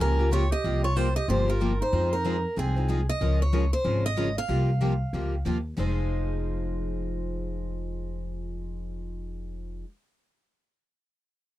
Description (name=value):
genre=acoustic string swing (jazz manouche)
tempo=187 BPM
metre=4/4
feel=swing 61% on 8ths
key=F minor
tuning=A4 = 440 Hz
part: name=picked steel-string acoustic guitar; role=melody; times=0.0-5.4 s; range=Ab4 to F5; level=-29 LUFS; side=right 1 dB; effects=none
part: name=clear clarinet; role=second line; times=0.0-3.0 s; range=C4 to G4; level=-34 LUFS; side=right 6 dB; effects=none
part: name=picked plugged-in steel-string acoustic guitar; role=accompaniment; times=0.0-9.9 s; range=C3 to C5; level=-32 LUFS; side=left 4 dB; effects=none
part: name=picked steel-string acoustic guitar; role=accompaniment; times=0.0-9.9 s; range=C3 to Bb4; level=-37 LUFS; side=right 7 dB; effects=none
part: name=upright bass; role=bass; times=0.0-9.8 s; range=F1 to F2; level=-27 LUFS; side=equal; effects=none
room=little or no reverb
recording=dry, close 1970s-style studio recording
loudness=-24 LUFS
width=side -15 dB against mid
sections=0.0-3.2 A section; 3.2-5.8 B section; 5.8-8.3 C section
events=none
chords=0.0 Gm7b5; 0.6 C7sus4; 1.9 Fm7; 3.2 Db69; 4.5 C7sus4; 5.8 Fm7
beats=0.00 0.32 | 0.64 0.96 1.28 1.60 | 1.93 2.25 2.57 2.89 | 3.21 3.53 3.85 4.17 | 4.49 4.81 5.13 5.46 | 5.78 6.10 6.42 6.74 | 7.06 7.38 7.71 8.03